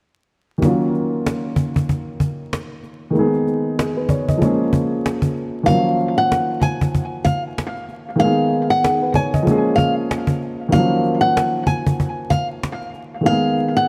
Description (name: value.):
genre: hip hop, boom-bap hip-hop.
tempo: 95 BPM.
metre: 4/4.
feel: swing 58% on 16ths.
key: unclear.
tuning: A4 = 444 Hz.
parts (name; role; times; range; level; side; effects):
dark baby grand piano; accompaniment; 0.6-13.9 s; D#3 to D#5; -22 LUFS; equal; cassette tape.
cajon; drums; 0.6-13.7 s; none; -23 LUFS; equal; none.
nylon-string guitar; melody; 5.7-13.9 s; E#5 to G#5; -22 LUFS; equal; analog delay.
room: light reverb.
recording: echo-heavy mix, vinyl crackle.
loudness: -19 LUFS.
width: mono.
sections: 0.6-5.7 A section; 5.7-13.9 B section.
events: none.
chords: 0.6 D#m7; 3.2 G#m; 4.4 A#m7; 5.7 D#m7; 8.2 G#m; 9.5 A#m7; 10.7 D#m7; 13.3 G#m.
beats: | 0.63 1.26 1.89 2.52 | 3.15 3.78 4.42 5.05 | 5.68 6.31 6.94 7.57 | 8.21 8.84 9.47 10.10 | 10.73 11.36 11.99 12.63 | 13.26.